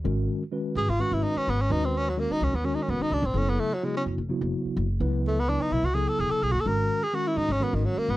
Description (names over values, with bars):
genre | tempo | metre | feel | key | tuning
electric jazz fusion | 254 BPM (eighths) | 7/8 | straight | G# minor | A4 = 435 Hz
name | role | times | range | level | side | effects
mellow tine electric piano | accompaniment | 0.0-8.2 s | C#3 to B4 | -30 LUFS | left 1 dB | medium stereo tremolo
upright bass | bass | 0.0-8.2 s | E1 to G#2 | -28 LUFS | equal | none
bright tenor saxophone | melody | 0.8-8.2 s | D#3 to A#4 | -26 LUFS | equal | slapback echo
room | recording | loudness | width
little or no reverb | dry, close 1970s-style studio recording | -24 LUFS | side -16 dB against mid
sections
0.1-8.2 A section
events
tenor saxophone solo 0.1-8.2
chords
0.1 G#m9; 3.4 F#m7; 6.7 G#7sus2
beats
| 0.05 0.29 0.53 0.76 1.00 1.23 1.47 | 1.71 1.94 2.18 2.41 2.65 2.88 3.12 | 3.36 3.59 3.83 4.07 4.30 4.54 4.77 | 5.01 5.25 5.48 5.72 5.96 6.19 6.43 | 6.66 6.90 7.14 7.37 7.61 7.85 8.08